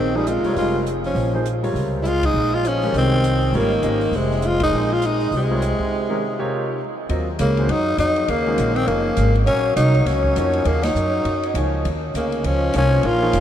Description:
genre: modal jazz.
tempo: 202 BPM.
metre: 4/4.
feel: swing 60% on 8ths.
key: Eb dorian from 7.1 s.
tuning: A4 = 440 Hz.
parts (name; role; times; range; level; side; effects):
growling tenor saxophone; melody; 0.0-13.4 s; Ab3 to F4; -21 LUFS; left 2 dB; none.
breathy tenor saxophone; second line; 0.0-13.4 s; C3 to Bb3; -26 LUFS; right 3 dB; none.
upright bass; bass; 0.0-13.4 s; F1 to Gb2; -22 LUFS; equal; none.
clear concert grand piano; accompaniment; 0.2-13.4 s; C3 to Eb5; -28 LUFS; equal; none.
open jazz drum kit; drums; 0.3-13.4 s; hi-hat, kick drum, ride cymbal, snare drum; -34 LUFS; equal; none.
room: wet huge ambient reverb, RT60 7.6 s.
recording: in a vast, echoing space.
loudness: -17 LUFS.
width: side -10 dB against mid.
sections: 0.0-7.1 A section; 7.1-13.4 B section.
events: band accent 2.2, 4.6, 10.8; break 5.9-7.1.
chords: 0.0 Bbm9; 7.1 Ebm7; 11.8 Bbm.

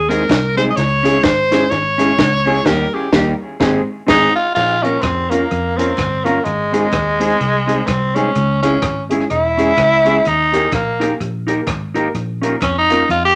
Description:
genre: ska.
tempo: 126 BPM.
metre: 4/4.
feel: swing 59% on 8ths.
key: Ab major.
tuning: A4 = 440 Hz.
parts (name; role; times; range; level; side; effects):
bright tenor saxophone; melody; 0.0-3.1 s; G4 to Eb5; -19 LUFS; equal; none.
fingered electric bass; bass; 0.0-13.4 s; Fb1 to F2; -24 LUFS; equal; tube saturation.
mellow electric guitar; accompaniment; 0.1-13.0 s; Bb3 to Bb4; -23 LUFS; equal; tape echo.
dark upright piano; stabs; 0.1-13.2 s; G3 to Bb4; -24 LUFS; equal; none.
compact cocktail drum kit; drums; 0.1-13.2 s; crash cymbal, hi-hat, kick drum, rim click, snare drum; -23 LUFS; equal; tape echo.
group handclap; percussion; 0.3-12.7 s; none; -33 LUFS; equal; none.
raspy tenor saxophone; melody; 4.1-13.4 s; Ab3 to G4; -18 LUFS; equal; none.
room: moderate studio reverb, RT60 0.5 s.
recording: none.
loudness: -16 LUFS.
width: mono.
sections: 0.0-4.6 A section; 4.6-13.4 B section.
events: tenor saxophone solo 0.0-4.6; band accent 2.7-4.6.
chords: 0.0 Ab; 0.8 Dbm; 2.7 Eb; 3.6 Ab; 4.6 Bbm; 6.5 Ab; 8.3 Dbm; 10.2 Eb; 12.1 Bbm.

